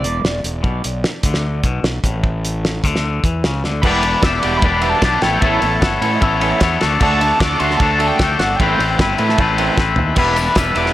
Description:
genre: indie rock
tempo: 151 BPM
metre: 4/4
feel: straight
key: E minor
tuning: A4 = 439 Hz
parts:
  - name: overdriven synth lead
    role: melody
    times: 0.0-0.4, 3.8-10.9 s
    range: D5 to E6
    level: -22 LUFS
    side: right 2 dB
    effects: distortion, chorus, tape echo
  - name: twangy electric guitar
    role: riff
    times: 0.0-10.9 s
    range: E2 to D5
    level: -19 LUFS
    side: left 6 dB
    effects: none
  - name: fuzz fingered electric bass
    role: bass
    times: 0.0-10.9 s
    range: E1 to A2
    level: -21 LUFS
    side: equal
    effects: overdrive
  - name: cloth-damped thuddy drum kit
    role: drums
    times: 0.0-10.9 s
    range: crash cymbal, hi-hat, kick drum, ride cymbal, snare drum, toms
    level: -19 LUFS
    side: equal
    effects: none
  - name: combo organ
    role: sustained chords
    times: 3.8-10.9 s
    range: G4 to D6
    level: -30 LUFS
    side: equal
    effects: none
  - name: crunchy overdriven guitar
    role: riff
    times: 3.8-10.9 s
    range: D3 to F#4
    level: -22 LUFS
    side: right 6 dB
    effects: wide subtle chorus
  - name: tine electric piano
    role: second line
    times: 5.8-10.1 s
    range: D#5 to B5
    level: -29 LUFS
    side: right 4 dB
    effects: none
  - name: tambourine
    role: percussion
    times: 10.4-10.8 s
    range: none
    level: -36 LUFS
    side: left 9 dB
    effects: none
room: light reverb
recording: none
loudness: -14 LUFS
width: side -14 dB against mid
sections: 0.0-3.8 A section; 3.8-10.9 B section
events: drum fill 3.6, 9.8-10.2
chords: 0.0 E7(no3); 0.6 Bm7; 3.8 Em7; 5.2 Aadd9; 6.8 D; 8.6 Amadd9; 10.2 Em7

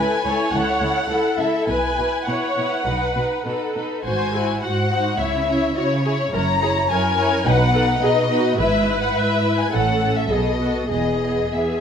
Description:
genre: quick classical-period movement for string orchestra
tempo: 105 BPM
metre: 4/4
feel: rubato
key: unclear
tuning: A4 = 440 Hz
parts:
  - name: dark symphonic violin section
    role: melody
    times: 0.0-11.8 s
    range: C#5 to A#5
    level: -23 LUFS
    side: left 4 dB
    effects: none
  - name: warm symphonic violin section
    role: second line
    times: 0.0-11.8 s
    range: B3 to C#5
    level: -24 LUFS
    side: left 2 dB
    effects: none
  - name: rich symphonic viola section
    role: accompaniment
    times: 0.0-11.8 s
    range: D#4 to C#5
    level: -24 LUFS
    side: right 1 dB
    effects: none
  - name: dark symphonic cello section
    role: bass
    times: 0.0-11.8 s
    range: C#2 to C#3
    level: -25 LUFS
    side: right 2 dB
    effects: none
  - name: rich symphonic double bass section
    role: bass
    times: 0.5-11.4 s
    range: E1 to C#2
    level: -26 LUFS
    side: right 3 dB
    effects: none
room: moderate recital hall reverb, RT60 1.6 s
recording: close, detailed microphones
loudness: -18 LUFS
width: side -7 dB against mid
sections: 0.0-11.8 A section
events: none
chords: 0.0 A/C#; 1.7 Bsus4; 2.9 B; 4.0 G#7; 5.2 C#m; 6.3 F#7; 7.5 B; 8.6 E/G#; 9.7 F#m/A; 10.3 B7; 10.9 E

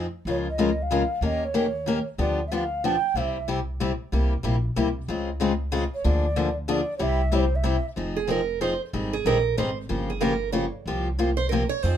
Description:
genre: acoustic string swing (jazz manouche)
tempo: 187 BPM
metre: 3/4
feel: swing 61% on 8ths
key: unclear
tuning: A4 = 440 Hz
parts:
  - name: picked steel-string acoustic guitar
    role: accompaniment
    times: 0.0-12.0 s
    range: C3 to Bb4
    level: -26 LUFS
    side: left 3 dB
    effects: none
  - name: upright bass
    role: bass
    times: 0.0-12.0 s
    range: F1 to F2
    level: -27 LUFS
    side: equal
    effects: none
  - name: mellow alto ocarina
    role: melody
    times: 0.3-3.5, 5.9-7.9 s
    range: C5 to G5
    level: -28 LUFS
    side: right 2 dB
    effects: none
  - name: picked acoustic archtop guitar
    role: second line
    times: 8.2-12.0 s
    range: Ab4 to Db5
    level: -26 LUFS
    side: right 7 dB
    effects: none
room: light reverb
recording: minimal, uncompressed stereo recording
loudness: -23 LUFS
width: side -10 dB against mid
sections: 0.3-8.0 A section; 8.0-12.0 B section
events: steel-string acoustic guitar solo 8.0-12.0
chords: 0.3 Db6; 1.2 Eb7; 2.2 G7/D; 3.2 C; 4.1 C7; 5.1 Dbmaj7; 6.0 Bb7/D; 7.0 C; 8.0 Fm7; 8.9 Abmaj9; 9.9 Gm7b5; 10.9 C7sus4

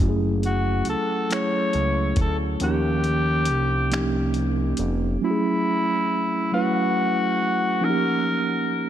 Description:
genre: slow six-eight R&B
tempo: 46 BPM (dotted quarters)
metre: 6/8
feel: straight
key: unclear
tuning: A4 = 440 Hz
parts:
  - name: mellow tine electric piano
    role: accompaniment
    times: 0.0-8.9 s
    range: E#3 to B4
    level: -24 LUFS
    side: right 2 dB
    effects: medium stereo tremolo
  - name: fat analog bass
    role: bass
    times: 0.0-5.2 s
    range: E#1 to D#2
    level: -24 LUFS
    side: equal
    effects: none
  - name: dusty soul sampler-style drum kit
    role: drums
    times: 0.0-5.0 s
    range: finger snaps, hi-hat, kick drum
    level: -27 LUFS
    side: equal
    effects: none
  - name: raspy tenor saxophone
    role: melody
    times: 0.5-8.9 s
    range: E4 to C#5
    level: -25 LUFS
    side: left 1 dB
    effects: diffuse ambient delay
room: wet church reverb, RT60 3.5 s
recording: dreamy mix soaked in reverb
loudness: -20 LUFS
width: side -10 dB against mid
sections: 0.0-5.2 A section; 5.2-8.9 B section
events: kick muted 2.6-5.2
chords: 0.0 F#m7; 2.6 D#7; 5.2 F#m7; 7.8 D#7

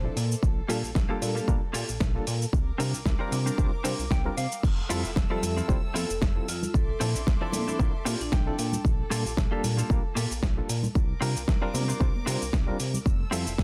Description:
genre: nu-disco, nu disco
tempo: 114 BPM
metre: 4/4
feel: swing 55% on 16ths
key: F major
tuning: A4 = 440 Hz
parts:
  - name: bright reed electric piano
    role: accompaniment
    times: 0.0-13.4 s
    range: F3 to E5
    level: -36 LUFS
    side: equal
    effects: fast tremolo, sidechain pumping, dub echo
  - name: warm chamber violin section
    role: sustained chords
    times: 0.0-13.6 s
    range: A4 to E6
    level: -43 LUFS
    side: equal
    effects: sidechain pumping
  - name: chorused synth bass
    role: bass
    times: 0.0-13.6 s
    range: F1 to C3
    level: -33 LUFS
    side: equal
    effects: none
  - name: dusty soul sampler-style drum kit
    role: drums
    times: 0.2-13.6 s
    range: crash cymbal, hi-hat, shaker, snare drum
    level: -36 LUFS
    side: equal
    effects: none
  - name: electronic kick drum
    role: drums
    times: 0.4-13.6 s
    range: none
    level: -28 LUFS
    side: equal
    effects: none
  - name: direct-recorded clean electric guitar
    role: riff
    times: 0.7-13.5 s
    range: Bb3 to G5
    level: -37 LUFS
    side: equal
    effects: lush chorus, dub echo
  - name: congas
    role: percussion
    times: 5.4-13.0 s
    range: none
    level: -40 LUFS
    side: equal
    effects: none
  - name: vibraphone with medium hard mallets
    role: melody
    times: 6.0-8.7 s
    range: D4 to A4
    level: -40 LUFS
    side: equal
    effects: vintage 12-bit sampler grit, dub echo
room: little or no reverb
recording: dense, heavily limited modern master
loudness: -27 LUFS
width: mono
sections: 0.0-13.6 A section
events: clean electric guitar fill 3.8-4.6, 7.8-8.8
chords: 0.4 Gm9/Bb; 2.5 C9sus4; 4.6 Fmaj7; 6.7 Bbmaj9#11; 8.8 Gm9/Bb; 11.0 C9sus4; 13.1 Fmaj7

